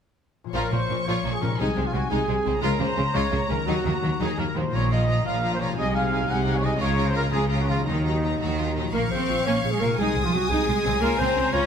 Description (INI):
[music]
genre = cinematic, heroic adventure film score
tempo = 115 BPM (dotted quarters)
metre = 6/8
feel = straight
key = unclear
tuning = A4 = 439 Hz
[part]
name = concert harp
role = arpeggios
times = 0.4-11.7 s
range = Bb2 to F5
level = -32 LUFS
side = left 13 dB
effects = none
[part]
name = rich symphonic violin section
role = melody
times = 0.5-11.7 s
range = Ab5 to Eb6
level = -33 LUFS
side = left 2 dB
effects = none
[part]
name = bright symphonic violin section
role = second line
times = 0.5-11.7 s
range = Ab3 to Ab5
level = -32 LUFS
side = left 1 dB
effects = none
[part]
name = clear symphonic viola section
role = accompaniment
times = 0.5-11.7 s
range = Db3 to F4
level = -31 LUFS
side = equal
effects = none
[part]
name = clear trumpet section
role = stabs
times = 0.5-11.7 s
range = C4 to Gb5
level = -28 LUFS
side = right 1 dB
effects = none
[part]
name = clear studio cello section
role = bass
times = 0.5-11.7 s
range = Bb2 to Db4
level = -28 LUFS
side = right 2 dB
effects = none
[part]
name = warm symphonic double bass section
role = bass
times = 0.5-11.6 s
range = Bb1 to Eb2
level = -28 LUFS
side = right 2 dB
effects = none
[part]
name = dark clarinet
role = second line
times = 8.9-11.7 s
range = F4 to Db5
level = -27 LUFS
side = left 2 dB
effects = none
[sound]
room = light reverb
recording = none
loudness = -21 LUFS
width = side -7 dB against mid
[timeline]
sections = 0.5-8.9 A section; 8.9-11.7 A section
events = none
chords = 0.5 Bbm; 1.6 Ab/C; 2.6 Db6; 3.7 Ebm; 4.7 Bb5; 5.8 Ab/C; 6.8 Db6; 7.9 Ebm; 8.9 Bbm; 10.0 Ab/C; 11.0 Db6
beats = | 0.55 1.07 | 1.59 2.10 | 2.62 3.14 | 3.67 4.20 | 4.73 5.25 | 5.77 6.29 | 6.80 7.32 | 7.86 8.40 | 8.94 9.46 | 9.98 10.50 | 11.02 11.54